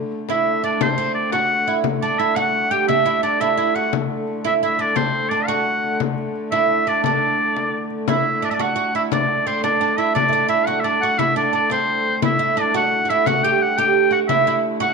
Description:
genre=medieval dance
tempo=116 BPM (dotted quarters)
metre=6/8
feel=straight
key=D mixolydian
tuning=A4 = 440 Hz
part: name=dark hurdy-gurdy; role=drone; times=0.0-14.9 s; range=D3 to A3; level=-27 LUFS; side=left 1 dB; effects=stereo widening
part: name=frame drum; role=percussion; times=0.1-14.9 s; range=none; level=-26 LUFS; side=left 14 dB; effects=none
part: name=clear shawm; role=melody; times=0.3-14.9 s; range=C5 to G5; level=-20 LUFS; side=left 2 dB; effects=none
part: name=oud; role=second line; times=0.3-14.9 s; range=C4 to G4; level=-22 LUFS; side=right 10 dB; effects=none
room=moderate plate reverb, RT60 2.5 s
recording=1960s-style stereo with parts hard left and right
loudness=-17 LUFS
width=side -4 dB against mid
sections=0.0-8.1 A section; 8.1-14.9 B section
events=none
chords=none

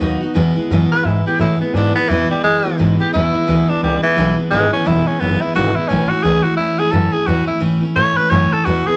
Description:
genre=rockabilly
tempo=174 BPM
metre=4/4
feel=swing 61% on 8ths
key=E major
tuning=A4 = 440 Hz
part: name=picked steel-string acoustic guitar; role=accompaniment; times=0.0-9.0 s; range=E2 to F#4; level=-20 LUFS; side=equal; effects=none
part: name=upright bass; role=bass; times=0.0-8.9 s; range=E1 to A2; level=-22 LUFS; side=equal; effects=none
part: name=raspy tenor saxophone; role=melody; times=0.9-9.0 s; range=E3 to C#5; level=-19 LUFS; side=equal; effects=none
room=wet studio reverb, RT60 0.9 s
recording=none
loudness=-16 LUFS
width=mono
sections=0.4-9.0 A section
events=tenor saxophone solo 0.4-9.0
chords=0.4 E; 5.9 A

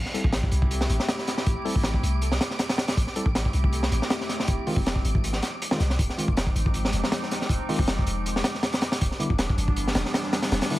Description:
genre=drum and bass, jungle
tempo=159 BPM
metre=4/4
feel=swing 53% on 16ths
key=A minor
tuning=A4 = 440 Hz
part: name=warbly tape-like pad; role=sustained chords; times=0.0-10.8 s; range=E3 to G4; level=-33 LUFS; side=equal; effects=chorus, built-in reverb
part: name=warm 808-style bass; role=bass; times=0.0-10.6 s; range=E1 to C2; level=-26 LUFS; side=equal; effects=none
part: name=wind-like tuned noise texture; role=texture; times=0.5-10.8 s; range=D6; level=-38 LUFS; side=right 2 dB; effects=built-in reverb
part: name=tine electric piano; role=stabs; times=0.1-10.8 s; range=D3 to A4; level=-32 LUFS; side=left 1 dB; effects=medium stereo tremolo, vintage 12-bit sampler grit, dub echo
part: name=crunchy breakbeat drum kit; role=drums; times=0.1-10.8 s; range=hi-hat, kick drum, snare drum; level=-25 LUFS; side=equal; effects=none
room=studio ambience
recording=vinyl crackle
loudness=-22 LUFS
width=side -16 dB against mid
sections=0.0-10.8 A section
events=none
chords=0.0 Am7; 4.5 Fm7; 8.3 Em7

